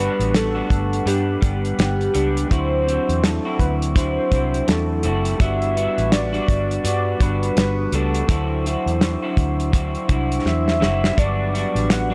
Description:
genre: indie pop, bedroom pop.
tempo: 83 BPM.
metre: 4/4.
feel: swing 60% on 16ths.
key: G major.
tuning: A4 = 440 Hz.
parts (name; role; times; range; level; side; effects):
soft octave-layered synth lead; melody; 0.0-12.1 s; G4 to F#5; -27 LUFS; equal; analog chorus, tape echo.
electric guitar through a small old amp; accompaniment; 0.0-12.1 s; D3 to F#4; -29 LUFS; equal; subtle chorus, vibrato effect.
mellow tonewheel organ; accompaniment; 0.0-12.1 s; F#3 to F#5; -29 LUFS; equal; slow rotary speaker.
vintage muted fingered electric bass; bass; 0.0-12.1 s; F#1 to G2; -26 LUFS; equal; none.
damped 70s drum kit; drums; 0.2-12.1 s; hi-hat, kick drum, snare drum; -22 LUFS; equal; vintage 12-bit sampler grit.
room: studio reverb.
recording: none.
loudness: -20 LUFS.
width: mono.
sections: 0.0-12.1 A section.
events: drum fill 10.5-11.2.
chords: 0.0 Gmaj7; 2.5 D9; 5.4 Gmaj7; 8.3 D9; 11.2 Gmaj7.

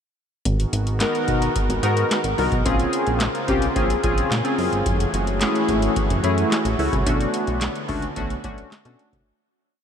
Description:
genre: early-eighties boogie funk.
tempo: 109 BPM.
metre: 4/4.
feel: straight.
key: unclear.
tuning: A4 = 439 Hz.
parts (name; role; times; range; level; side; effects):
brassy analog pad; sustained chords; 0.5-9.2 s; C#3 to C#5; -28 LUFS; equal; chorus.
chorused synth bass; bass; 0.5-9.2 s; F#1 to B2; -25 LUFS; equal; none.
booming analog drum machine; drums; 0.5-9.3 s; handclaps, hi-hat, kick drum, snare drum; -25 LUFS; equal; none.
chorused polysynth; accompaniment; 1.0-9.3 s; G#3 to A#4; -22 LUFS; left 1 dB; none.
room: moderate huge ambient reverb, RT60 7.7 s.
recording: dreamy mix soaked in reverb.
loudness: -19 LUFS.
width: side -8 dB against mid.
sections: 0.5-9.3 verse.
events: fade-out 7.1-9.3.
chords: 0.5 G#m9; 2.7 A#m9; 4.9 F#m9; 7.1 Bm9.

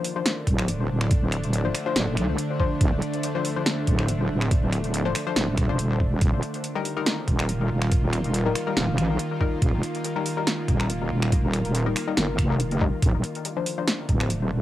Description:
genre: deep dubstep.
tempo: 141 BPM.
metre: 4/4.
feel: swing 54% on 16ths, half-time.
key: D phrygian.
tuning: A4 = 440 Hz.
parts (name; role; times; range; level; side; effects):
bowed-like drone; sustained chords; 0.0-14.6 s; D3 to F4; -30 LUFS; equal; built-in reverb, cassette tape.
filtered dub chord stab; stabs; 0.0-14.0 s; F3 to C5; -31 LUFS; left 7 dB; chorus, cassette tape, dub echo.
deep house drum kit; drums; 0.0-14.4 s; finger snaps, hi-hat, snare drum; -28 LUFS; right 1 dB; overdrive.
wobble bass; bass; 0.5-14.6 s; D1 to C2; -24 LUFS; equal; chorus, tube saturation.
electronic kick drum; drums; 0.5-14.2 s; none; -23 LUFS; equal; none.
room: digital ambience.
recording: home recording on cassette.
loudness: -22 LUFS.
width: side -14 dB against mid.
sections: 0.0-14.6 A section.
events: none.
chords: 0.0 Dm7; 6.2 Eb; 13.0 Dm7.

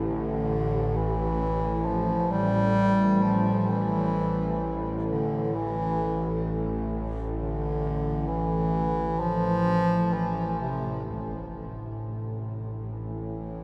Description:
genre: dark ambient drone.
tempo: 65 BPM.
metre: 4/4.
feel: straight.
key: A minor.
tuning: A4 = 440 Hz.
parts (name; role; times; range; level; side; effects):
mellow bass clarinet; melody; 0.0-13.6 s; C3 to G3; -29 LUFS; equal; diffuse ambient delay.
bowed-like drone; drone; 0.0-13.6 s; A1 to A2; -32 LUFS; equal; built-in reverb.
bronze singing bowl; texture; 0.0-13.6 s; D4 to G4; -50 LUFS; equal; none.
impact; percussion; 11.1-11.2 s; none; -51 LUFS; equal; none.
room: wet huge ambient reverb, RT60 8.0 s.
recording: dreamy mix soaked in reverb, faint mains hum.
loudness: -27 LUFS.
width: mono.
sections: 0.0-11.1 A section; 11.1-13.6 B section.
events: none.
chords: 0.0 A7(no3).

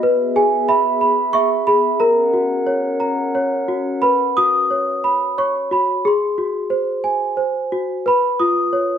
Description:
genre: children's music, lullaby.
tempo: 90 BPM.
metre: 3/4.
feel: straight.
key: B major.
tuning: A4 = 438 Hz.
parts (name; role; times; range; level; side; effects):
celesta; melody; 0.0-9.0 s; E#4 to D#6; -16 LUFS; equal; none.
glass harmonica; sustained chords; 0.0-4.0 s; B3 to F#5; -25 LUFS; equal; none.
room: moderate recital hall reverb, RT60 1.4 s.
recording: dark, warm production.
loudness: -15 LUFS.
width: side -8 dB against mid.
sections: 0.0-4.0 A section; 4.0-9.0 B section.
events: none.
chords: 0.0 E; 2.0 F#; 4.0 Bsus2; 6.1 G#7; 8.1 C#7.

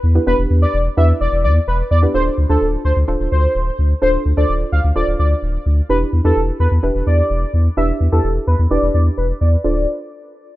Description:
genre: dance-pop.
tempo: 128 BPM.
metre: 4/4.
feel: straight.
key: D dorian.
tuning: A4 = 440 Hz.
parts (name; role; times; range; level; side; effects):
saturated sub bass; bass; 0.0-9.9 s; D1 to E2; -15 LUFS; equal; none.
soft round pluck; accompaniment; 0.1-9.9 s; B3 to C5; -22 LUFS; right 2 dB; chorus, low-pass filter.
octave-doubled lead; melody; 0.3-9.9 s; A4 to F5; -20 LUFS; left 1 dB; chorus, low-pass filter, digital delay.
room: little or no reverb.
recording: rough home demo mix.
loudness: -14 LUFS.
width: side -16 dB against mid.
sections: 0.0-2.1 A section; 2.1-9.6 B section.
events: filter sweep 2.1-9.6.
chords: 0.0 Em7; 2.1 Dm7; 5.9 Em7; 9.6 Dm7.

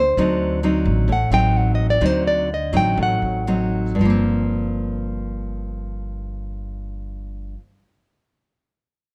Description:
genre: bossa nova.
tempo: 114-134 BPM.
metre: 4/4.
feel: straight.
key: G minor.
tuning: A4 = 440 Hz.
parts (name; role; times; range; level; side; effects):
nylon-string guitar; melody; 0.0-3.9 s; C5 to G5; -23 LUFS; equal; none.
nylon-string guitar; accompaniment; 0.0-7.7 s; G2 to Eb4; -24 LUFS; equal; none.
upright bass; bass; 0.0-7.5 s; G1 to D2; -27 LUFS; equal; none.
room: light reverb.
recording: none.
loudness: -20 LUFS.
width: mono.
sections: 0.0-4.0 A section; 4.0-8.2 B section.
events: nylon-string guitar solo 0.0-4.0; slowing down 0.2-4.0.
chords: 0.2 D7b9; 4.0 Gm7.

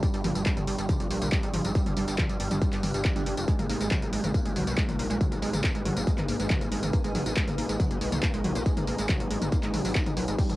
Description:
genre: driving peak-time techno.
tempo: 139 BPM.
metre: 4/4.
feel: straight.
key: unclear.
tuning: A4 = 441 Hz.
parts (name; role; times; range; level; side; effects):
resonant blip pluck; riff; 0.0-10.6 s; F3 to Eb4; -32 LUFS; right 1 dB; chorus, sidechain pumping, cassette tape, analog delay.
overtone-sweeping drone; drone; 0.0-10.6 s; G2; -38 LUFS; left 1 dB; chorus, built-in reverb, sidechain pumping, cassette tape.
electronic kick drum; drums; 0.0-10.5 s; none; -27 LUFS; equal; distortion, overdrive, cassette tape.
punchy analog drum machine; drums; 0.0-10.6 s; crash cymbal, handclaps, hi-hat, tambourine, toms; -32 LUFS; left 1 dB; overdrive, cassette tape.
gritty driven synth bass; bass; 0.1-10.6 s; F1 to Cb2; -33 LUFS; equal; distortion, sidechain pumping.
rave stab; stabs; 0.2-7.2 s; G3 to Eb4; -40 LUFS; right 6 dB; none.
granular cloud pad; texture; 5.0-10.6 s; Eb4 to Ab5; -37 LUFS; left 2 dB; built-in reverb, sidechain pumping, cassette tape.
room: light reverb.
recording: home recording on cassette.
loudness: -25 LUFS.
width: side -18 dB against mid.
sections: 0.0-10.6 A section.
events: none.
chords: 0.0 Gm; 3.5 Abm.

